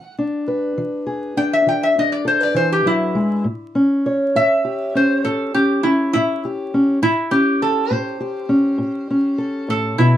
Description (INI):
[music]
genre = acoustic country blues, solo or duo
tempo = 67 BPM (dotted quarters)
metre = 12/8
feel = straight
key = A mixolydian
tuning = A4 = 440 Hz
[part]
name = metal-body resonator slide guitar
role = melody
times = 0.0-10.2 s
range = E4 to G5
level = -18 LUFS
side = equal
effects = none
[part]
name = fingerpicked steel-string acoustic guitar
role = accompaniment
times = 0.0-10.2 s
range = A2 to C#5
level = -18 LUFS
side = equal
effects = none
[sound]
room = moderate booth ambience, RT60 0.2 s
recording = dark, warm production, vinyl crackle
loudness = -16 LUFS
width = side -11 dB against mid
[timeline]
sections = 0.0-3.4 A section; 3.4-10.2 A section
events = none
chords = 0.0 E7; 3.4 A7